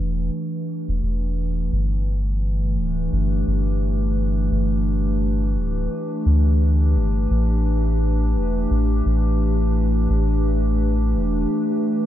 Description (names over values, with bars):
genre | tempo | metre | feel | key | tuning
ambient dub | 86 BPM | 4/4 | swing 59% on 16ths | unclear | A4 = 440 Hz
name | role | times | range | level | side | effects
warbly tape-like pad | sustained chords | 0.0-12.1 s | E3 to B4 | -23 LUFS | equal | chorus, built-in reverb
soft dub sub bass | bass | 0.0-11.5 s | D1 to D2 | -20 LUFS | equal | none
room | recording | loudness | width
light reverb | none | -18 LUFS | side -12 dB against mid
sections
0.0-12.1 A section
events
none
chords
0.0 Asus2; 1.7 G; 7.3 Asus2